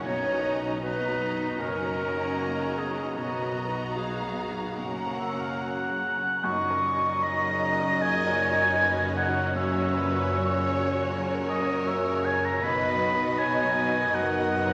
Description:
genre	cinematic, emotional film score for orchestra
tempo	77 BPM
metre	4/4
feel	rubato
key	F# major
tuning	A4 = 442 Hz
part	rich studio violin section	second line	0.0-14.7 s	A#4 to A#5	-37 LUFS	equal	none
part	felt-muted upright piano	accompaniment	0.0-14.7 s	B1 to B4	-40 LUFS	equal	none
part	rich studio viola section	accompaniment	0.0-14.7 s	B3 to F#4	-36 LUFS	equal	none
part	concert harp	arpeggios	0.0-14.7 s	F#2 to A#5	-42 LUFS	equal	none
part	rich studio cello section	bass	0.0-14.7 s	F#2 to D#4	-38 LUFS	equal	none
part	rich studio double bass section	bass	0.0-14.7 s	F#1 to B1	-42 LUFS	equal	none
part	warm clarinet	second line	0.1-5.6 s	F#4 to C#5	-34 LUFS	equal	none
part	warm oboe	second line	5.2-14.7 s	D#5 to C#6	-29 LUFS	equal	none
part	rich studio violin section	melody	6.4-14.7 s	C#5 to D#5	-35 LUFS	equal	none
part	mellow French horn section	sustained chords	6.5-14.7 s	A#2 to D#4	-36 LUFS	equal	none
room	wet church reverb, RT60 2.5 s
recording	none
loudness	-27 LUFS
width	mono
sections	0.0-6.4 A section; 6.4-14.7 A section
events	none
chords	0.1 Bmaj7; 1.6 F#6; 3.2 Bmaj7; 4.8 F#; 6.4 F#6; 9.6 F#7; 12.6 Bmaj7; 14.1 F#6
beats	| 0.07 0.84 1.61 2.39 | 3.17 3.97 4.78 5.61 | 6.44 7.23 8.01 8.78 | 9.55 10.33 11.11 11.87 | 12.63 13.39 14.15

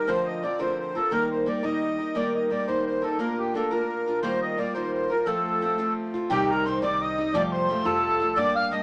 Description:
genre	celtic folk, Celtic jig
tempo	116 BPM (dotted quarters)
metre	6/8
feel	straight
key	F mixolydian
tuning	A4 = 440 Hz
part	accordion	melody	0.0-8.8 s	G4 to F5	-28 LUFS	equal	light tremolo tuning
part	picked steel-string acoustic guitar	accompaniment	0.0-8.8 s	D2 to Bb4	-30 LUFS	equal	none
part	mellow hollow tin whistle	second line	6.3-8.8 s	G5 to F6	-31 LUFS	equal	none
part	upright bass	bass	6.3-8.8 s	C2 to G2	-45 LUFS	equal	none
room	wet studio reverb, RT60 0.7 s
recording	none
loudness	-26 LUFS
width	mono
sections	0.0-6.3 A section; 6.3-8.8 B section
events	none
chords	0.1 Bbadd9/D; 1.1 Eb; 3.2 Bb; 4.2 Ebadd9; 5.3 F; 6.3 Cm; 7.3 Fadd9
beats	| 0.08 0.60 | 1.12 1.63 | 2.15 2.67 | 3.19 3.71 | 4.23 4.75 | 5.27 5.79 | 6.30 6.82 | 7.34 7.85 | 8.37

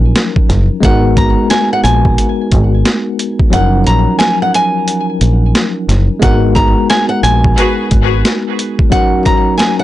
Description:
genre	hip hop, boom-bap hip-hop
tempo	89 BPM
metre	4/4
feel	swing 62% on 16ths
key	unclear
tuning	A4 = 441 Hz
part	mellow tine electric piano	accompaniment	0.0-9.8 s	F3 to Bb4	-16 LUFS	left 2 dB	slow stereo tremolo
part	deep dub fingered electric bass	bass	0.0-8.2 s	Gb1 to Bb1	-12 LUFS	equal	transformer saturation
part	boom bap sampler-style drum kit	drums	0.2-9.8 s	hi-hat, kick drum, snare drum	-13 LUFS	equal	none
part	flamenco guitar	melody	0.8-9.8 s	Gb5 to Bb5	-15 LUFS	equal	ping-pong delay
part	muted studio string section	stabs	7.6-7.9 s	Gb4 to Cb5	-17 LUFS	left 2 dB	ping-pong delay
room	little or no reverb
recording	blown-out, overdriven recording, overdrive, nothing above 10.7 kHz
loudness	-9 LUFS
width	side -14 dB against mid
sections	0.0-9.8 A section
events	kick muted 3.5-6.2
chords	0.0 Ebm7; 0.8 Abm7; 3.5 Ebm7/Gb; 6.2 Abm7; 8.9 Ebm7/Gb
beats	0.16 | 0.83 1.50 2.18 2.85 | 3.53 4.20 4.88 5.55 | 6.22 6.90 7.57 8.25 | 8.92 9.60

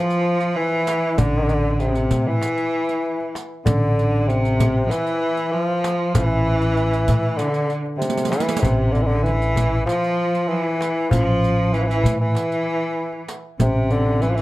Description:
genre	Arabic maqam ensemble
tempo	97 BPM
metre	4/4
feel	straight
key	unclear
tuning	A4 = 440 Hz
part	clear bassoon	melody	0.0-14.4 s	C3 to F3	-22 LUFS	left 1 dB	analog delay
part	bright cello	second line	0.0-14.4 s	C3 to F3	-24 LUFS	right 1 dB	none
part	darbuka	percussion	0.1-14.4 s	none	-24 LUFS	left 1 dB	none
part	riq	percussion	0.1-14.4 s	none	-30 LUFS	right 6 dB	none
part	upright bass	bass	1.2-14.4 s	A1 to A2	-21 LUFS	equal	none
room	moderate studio reverb, RT60 0.6 s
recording	dark, warm production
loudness	-18 LUFS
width	side -17 dB against mid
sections	0.0-14.4 A section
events	drum fill 8.0-8.6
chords	none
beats	0.56 | 1.18 1.80 2.42 3.04 | 3.66 4.28 4.91 5.53 | 6.15 6.77 7.39 8.01 | 8.63 9.25 9.87 10.49 | 11.11 11.73 12.36 12.98 | 13.60 14.22

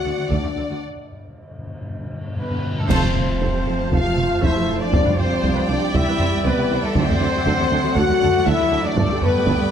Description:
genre	cinematic, epic orchestral film score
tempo	118 BPM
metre	4/4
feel	straight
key	unclear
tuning	A4 = 440 Hz
part	rich symphonic violin section	melody	0.0-9.7 s	A4 to F#5	-27 LUFS	left 4 dB	none
part	warm symphonic violin section	second line	0.0-9.7 s	D5 to A5	-31 LUFS	equal	none
part	warm studio viola section	accompaniment	0.0-9.7 s	F4 to D5	-30 LUFS	right 2 dB	none
part	dark French horn section	sustained chords	0.0-9.7 s	A3 to F#4	-24 LUFS	left 6 dB	none
part	mellow tuba	bass	0.0-9.5 s	F1 to D2	-28 LUFS	right 4 dB	none
part	warm symphonic double bass section	bass	0.0-9.5 s	F1 to D2	-28 LUFS	right 4 dB	none
part	bright studio cello section	bass	0.1-9.7 s	C2 to G2	-28 LUFS	right 3 dB	none
part	taiko ensemble	drums	0.3-9.7 s	none	-23 LUFS	equal	none
part	timpani	percussion	0.8-5.6 s	G2 to C3	-30 LUFS	left 1 dB	none
part	dark trumpet section	stabs	2.4-9.7 s	A4 to F#5	-27 LUFS	right 2 dB	none
part	clear trombone section	sustained chords	2.9-9.7 s	E3 to A3	-28 LUFS	right 5 dB	none
part	clash cymbals and concert bass drum	percussion	2.9-3.9 s	none	-30 LUFS	equal	none
room	moderate scoring stage reverb, RT60 1.7 s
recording	none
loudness	-17 LUFS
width	side -8 dB against mid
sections	0.0-2.9 A section; 2.9-9.7 A section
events	break 0.8-2.9; timpani fill 0.8-2.9; drum fill 2.4-2.9; band accent 2.9-3.4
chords	0.0 D; 0.8 N.C.; 2.9 F; 4.9 Cadd9; 7.0 D7; 9.0 Gadd9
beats	0.32 | 0.83 1.35 1.87 2.38 | 2.90 3.41 3.92 4.42 | 4.93 5.43 5.94 6.45 | 6.95 7.46 7.96 8.47 | 8.97 9.47

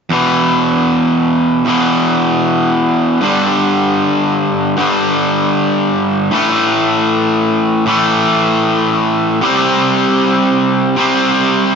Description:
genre	rock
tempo	116 BPM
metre	3/4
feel	straight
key	E minor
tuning	A4 = 442 Hz
part	cranked stack guitar	solo	0.1-11.8 s	E2 to C4	-11 LUFS	equal	overdrive, slapback echo, tape echo
room	wet lush hall reverb, RT60 2.0 s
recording	big arena sound, nothing above 7.7 kHz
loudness	-11 LUFS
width	side -6 dB against mid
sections	0.1-11.8 A section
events	none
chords	0.1 E5; 3.2 G5; 6.3 A5; 9.4 C5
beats	| 0.12 0.64 1.16 | 1.67 2.19 2.71 | 3.23 3.74 4.26 | 4.78 5.29 5.81 | 6.33 6.85 7.36 | 7.88 8.40 8.91 | 9.43 9.95 10.47 | 10.98 11.50

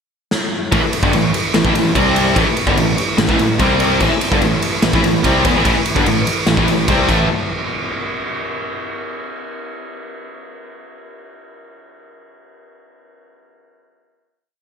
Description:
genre	hard rock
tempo	146 BPM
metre	4/4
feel	straight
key	A minor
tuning	A4 = 440 Hz
part	raw garage drum kit	drums	0.3-7.2 s	crash cymbal, kick drum, ride cymbal, snare drum	-19 LUFS	equal	none
part	tonewheel organ	sustained chords	0.7-7.3 s	A3 to D5	-26 LUFS	right 1 dB	none
part	crunchy overdriven guitar	riff	0.7-7.3 s	G2 to C4	-20 LUFS	right 11 dB	lush chorus
part	tight distorted guitar	riff	0.7-7.3 s	G2 to C4	-18 LUFS	left 9 dB	distortion
part	fuzz picked electric bass	bass	0.7-7.3 s	G1 to E2	-21 LUFS	equal	overdrive
room	moderate lush hall reverb, RT60 1.9 s, studio reverb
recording	bright 1980s-style digital production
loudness	-14 LUFS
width	side -6 dB against mid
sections	0.0-0.7 pickup bar; 0.7-7.3 riff; 7.3-8.9 final hit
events	drum fill 0.3-0.7, 7.1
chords	0.0 N.C.; 0.7 A5; 2.0 C5; 2.4 A5; 3.6 C5; 4.0 Am; 7.1 A5; 7.3 N.C.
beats	0.31 | 0.72 1.13 1.54 1.95 | 2.36 2.77 3.19 3.60 | 4.01 4.42 4.83 5.24 | 5.65 6.06 6.47 6.88

